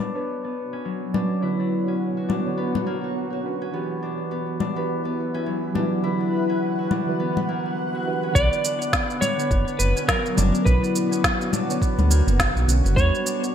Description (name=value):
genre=organic downtempo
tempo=104 BPM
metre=4/4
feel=swing 58% on 16ths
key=B harmonic minor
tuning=A4 = 441 Hz
part: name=muted felt-like synth keys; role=accompaniment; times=0.0-13.5 s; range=D3 to D5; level=-30 LUFS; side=right 4 dB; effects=chorus, sidechain pumping, ping-pong delay
part: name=granular cloud pad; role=sustained chords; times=0.7-13.5 s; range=B3 to F#5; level=-30 LUFS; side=equal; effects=built-in reverb, sidechain pumping
part: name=concert harp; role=arpeggios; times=0.0-13.5 s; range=F#3 to F#4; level=-27 LUFS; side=left 1 dB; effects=low-pass filter, ping-pong delay
part: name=electronic congas, shaker and snare drum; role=drums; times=1.1-13.5 s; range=none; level=-26 LUFS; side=left 2 dB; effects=overdrive, small room reverb, gated reverb
part: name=clean lap steel guitar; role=melody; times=8.4-13.5 s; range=A#4 to D5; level=-26 LUFS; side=equal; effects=ping-pong delay
part: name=smooth gliding synth bass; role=bass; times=8.4-13.1 s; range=F#1 to E2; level=-19 LUFS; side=equal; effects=sidechain pumping
part: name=electronic kick drum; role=drums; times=8.4-13.1 s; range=none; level=-23 LUFS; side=equal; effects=overdrive, small room reverb
room=wet plate reverb, RT60 1.6 s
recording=bright 1980s-style digital production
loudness=-20 LUFS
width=side -9 dB against mid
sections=0.0-8.4 A section; 8.4-13.5 B section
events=filter sweep on ambient pad 0.0-8.4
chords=0.0 Bmadd9; 3.7 Em9; 8.4 Bmadd9; 13.0 Em9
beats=0.28 0.85 | 1.43 2.01 2.58 3.16 | 3.74 4.32 4.89 5.47 | 6.05 6.62 7.20 7.78 | 8.35 8.93 9.51 10.08 | 10.66 11.24 11.81 12.39 | 12.97 13.55